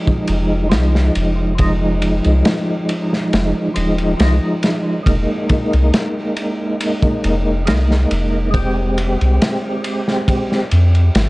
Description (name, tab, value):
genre	trip hop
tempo	69 BPM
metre	4/4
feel	straight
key	F minor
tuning	A4 = 437 Hz
part	percussive tonewheel organ	accompaniment	0.0-10.7 s	F3 to G4	-19 LUFS	equal	chorus vibrato, slow rotary speaker, tremolo, vintage 12-bit sampler grit, low-pass filter, tape echo
part	crunchy breakbeat drum kit	drums	0.1-11.3 s	kick drum, ride cymbal, snare drum	-20 LUFS	equal	none
part	soft dub sub bass	bass	0.3-11.3 s	Eb1 to F2	-15 LUFS	equal	none
room	small room reverb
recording	worn, warbling old tape, cassette tape, warbly pitch drift, nothing above 11.0 kHz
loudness	-14 LUFS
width	side -22 dB against mid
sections	0.0-11.3 A section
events	filter sweep on tonewheel organ 0.0-11.3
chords	0.0 Fm7; 5.1 Bb7sus4/F; 8.5 Abmaj7/F